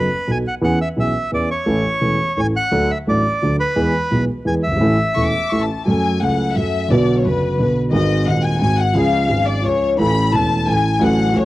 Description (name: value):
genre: tango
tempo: 173 BPM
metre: 3/4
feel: rubato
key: A major, F# minor from 5.9 s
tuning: A4 = 436 Hz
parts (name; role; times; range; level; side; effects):
- bandoneon; melody; 0.0-5.7 s; B4 to G#5; -21 LUFS; right 1 dB; cassette tape
- dark grand piano; accompaniment; 0.0-11.4 s; D#1 to A4; -17 LUFS; right 1 dB; none
- warm studio violin section; second line; 5.2-11.4 s; B4 to D6; -20 LUFS; left 4 dB; none
room: light reverb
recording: home recording on cassette, vinyl crackle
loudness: -15 LUFS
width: side -16 dB against mid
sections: 0.0-5.9 A section; 5.9-11.4 B section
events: violin section solo 5.9-11.4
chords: 0.0 B7; 0.6 E6; 1.7 A; 2.7 D; 3.8 E; 4.8 A; 5.9 F#m; 6.9 Bm; 7.9 G#7; 8.9 C#; 10.0 A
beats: 0.27 | 0.62 0.97 1.32 | 1.67 2.02 2.37 | 2.72 3.07 3.42 | 3.76 4.11 4.46 | 4.81 5.16 5.52 | 5.87 6.22 6.57 | 6.91 7.25 7.59 | 7.93 8.27 8.61 | 8.95 9.29 9.63 | 9.98 10.33 10.67 | 11.01 11.35